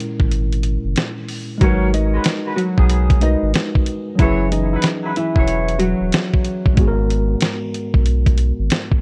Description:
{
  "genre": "hip hop, boom-bap hip-hop",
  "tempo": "93 BPM",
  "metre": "4/4",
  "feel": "swing 63% on 16ths",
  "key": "G# minor",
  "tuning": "A4 = 440 Hz",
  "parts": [
    { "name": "mellow tine electric piano", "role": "accompaniment", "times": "0.0-9.0 s", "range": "G#2 to B4", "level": "-26 LUFS", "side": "equal", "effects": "cassette tape, high-pass filter, low-pass filter" },
    { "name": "dusty soul sampler-style drum kit", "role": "drums", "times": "0.0-9.0 s", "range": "hi-hat, kick drum, snare drum", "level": "-19 LUFS", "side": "equal", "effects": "none" },
    { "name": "warm sub bass", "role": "bass", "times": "0.2-8.7 s", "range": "D#1 to B1", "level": "-21 LUFS", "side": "equal", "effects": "none" },
    { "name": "nylon-string guitar", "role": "melody", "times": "1.6-6.7 s", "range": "E3 to D#5", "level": "-24 LUFS", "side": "equal", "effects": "high-pass filter, low-pass filter, analog delay" },
    { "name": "warm horn section", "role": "stabs", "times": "1.6-5.8 s", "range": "D#3 to C#5", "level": "-30 LUFS", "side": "equal", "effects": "high-pass filter, low-pass filter, analog delay" }
  ],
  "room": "little or no reverb",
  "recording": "worn, warbling old tape, cassette tape, warbly pitch drift",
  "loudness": "-18 LUFS",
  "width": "mono",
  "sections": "0.0-1.6 A section; 1.6-9.0 B section",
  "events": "break 0.3-1.6",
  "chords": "0.0 A#m7b5; 1.6 G#m7; 4.2 F#7sus4; 6.8 G#m7",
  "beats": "0.32 0.97 | 1.61 2.26 2.90 3.55 | 4.19 4.84 5.48 6.13 | 6.77 7.42 8.06 8.71"
}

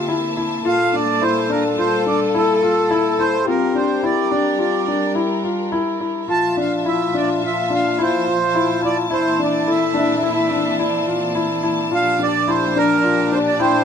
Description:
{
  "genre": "contemporary instrumental, chamber music in an uneven meter",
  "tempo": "106 BPM",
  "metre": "5/4",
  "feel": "straight",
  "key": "unclear",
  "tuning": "A4 = 440 Hz",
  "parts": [
    { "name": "warm French horn", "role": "second line", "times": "0.0-13.8 s", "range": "D4 to A4", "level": "-22 LUFS", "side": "left 4 dB", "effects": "none" },
    { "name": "rich symphonic string section", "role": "sustained chords", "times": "0.0-13.8 s", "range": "Bb2 to A5", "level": "-25 LUFS", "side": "equal", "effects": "none" },
    { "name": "dark concert grand piano", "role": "arpeggios", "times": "0.0-13.8 s", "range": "D4 to F4", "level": "-20 LUFS", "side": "left 2 dB", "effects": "none" },
    { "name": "large celesta", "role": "texture", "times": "0.0-13.8 s", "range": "C4 to G5", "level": "-28 LUFS", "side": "left 2 dB", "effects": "none" },
    { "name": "accordion", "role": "melody", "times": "0.7-13.8 s", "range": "A4 to A5", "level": "-21 LUFS", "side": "right 5 dB", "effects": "none" }
  ],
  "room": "light reverb",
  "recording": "close, detailed microphones",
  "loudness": "-16 LUFS",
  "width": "side -7 dB against mid",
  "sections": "0.0-13.8 A section",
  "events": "none",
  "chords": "0.0 C13; 0.7 Gm9/Bb; 3.5 Bb6; 6.3 Fmaj7/Bb; 9.1 C13/Bb; 11.9 Gm9/Bb",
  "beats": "0.10 | 0.66 1.22 1.79 2.35 2.91 | 3.48 4.04 4.61 5.17 5.73 | 6.30 6.86 7.42 7.99 8.55 | 9.11 9.68 10.24 10.80 11.36 | 11.92 12.49 13.05 13.61"
}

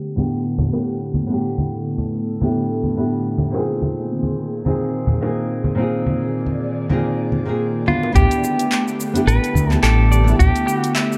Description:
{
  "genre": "sunset chillout",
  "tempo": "107 BPM",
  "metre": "4/4",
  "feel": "swing 55% on 16ths",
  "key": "unclear",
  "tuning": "A4 = 438 Hz",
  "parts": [
    { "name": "airy breathy pad", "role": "sustained chords", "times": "0.0-11.2 s", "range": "D3 to D5", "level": "-28 LUFS", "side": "equal", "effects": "chorus, phaser" },
    { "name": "nylon-string guitar", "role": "accompaniment", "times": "0.2-11.2 s", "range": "A2 to G#4", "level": "-24 LUFS", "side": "equal", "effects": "tape echo" },
    { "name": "congas and bongos", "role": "percussion", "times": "0.2-8.1 s", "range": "none", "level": "-26 LUFS", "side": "equal", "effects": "none" },
    { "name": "semi-hollow electric guitar", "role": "melody", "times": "7.9-10.9 s", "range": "F4 to B4", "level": "-24 LUFS", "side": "equal", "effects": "vintage 12-bit sampler grit, digital delay" },
    { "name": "semi-hollow electric guitar", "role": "arpeggios", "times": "8.2-11.1 s", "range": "G4 to E5", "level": "-30 LUFS", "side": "equal", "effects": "spring reverb, tape echo" },
    { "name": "fretless electric bass", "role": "bass", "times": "8.2-10.5 s", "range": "A1 to D2", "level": "-17 LUFS", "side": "equal", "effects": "tube saturation" },
    { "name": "deep house drum kit", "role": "drums", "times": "8.2-11.2 s", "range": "handclaps, hi-hat, shaker", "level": "-28 LUFS", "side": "equal", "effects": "low-pass filter on hats, low-pass filter on perc, low-pass filter on snare, low-pass filter on toms" },
    { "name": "electronic kick drum", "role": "drums", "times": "8.2-10.5 s", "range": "none", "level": "-20 LUFS", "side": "equal", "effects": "none" }
  ],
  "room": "moderate lush hall reverb, RT60 1.6 s",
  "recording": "dark, warm production, low-pass filter",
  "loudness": "-19 LUFS",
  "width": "mono",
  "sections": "0.0-8.2 A section; 8.2-11.2 B section",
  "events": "filter sweep on analog synth pad 0.0-8.2; filter sweep 0.0-8.2",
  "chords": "0.0 A9sus4; 3.7 Bb9sus4; 8.2 A9sus4",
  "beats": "0.30 0.86 | 1.42 1.98 2.54 3.11 | 3.67 4.23 4.79 5.35 | 5.91 6.47 7.03 7.59 | 8.15 8.71 9.27 9.84 | 10.39 10.96"
}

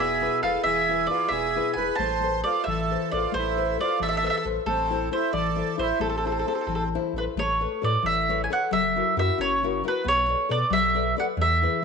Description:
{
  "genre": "italian folk, Italian serenade",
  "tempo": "90 BPM (dotted quarters)",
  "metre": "6/8",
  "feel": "rubato",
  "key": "A harmonic minor, A major from 7.4 s",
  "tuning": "A4 = 442 Hz",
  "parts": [
    { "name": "mandolin", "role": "melody", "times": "0.0-11.8 s", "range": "A4 to A5", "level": "-24 LUFS", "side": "right 2 dB", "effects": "none" },
    { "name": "accordion", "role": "second line", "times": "0.0-6.9 s", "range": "C4 to C5", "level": "-30 LUFS", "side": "right 11 dB", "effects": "none" },
    { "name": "nylon-string guitar", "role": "accompaniment", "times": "0.0-11.8 s", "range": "B2 to D5", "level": "-28 LUFS", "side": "left 11 dB", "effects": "none" },
    { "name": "sub bass with octave", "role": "bass", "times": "0.0-11.8 s", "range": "E1 to B2", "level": "-31 LUFS", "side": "right 1 dB", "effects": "none" }
  ],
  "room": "moderate echo chamber reverb, RT60 1.8 s, studio reverb",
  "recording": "1960s-style stereo with parts hard left and right",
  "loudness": "-22 LUFS",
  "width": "side -5 dB against mid",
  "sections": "0.0-7.4 A section; 7.4-11.8 B section",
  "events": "none",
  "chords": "0.0 E; 2.0 Amadd9; 4.7 Am; 7.4 Aadd9; 8.7 F#7; 10.1 Bm7",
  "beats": "| 0.65 1.31 | 1.98 2.66 | 3.33 3.99 | 4.66 5.32 | 5.99 6.67 | 7.36 8.04 | 8.72 9.39 | 10.05 10.72 | 11.38"
}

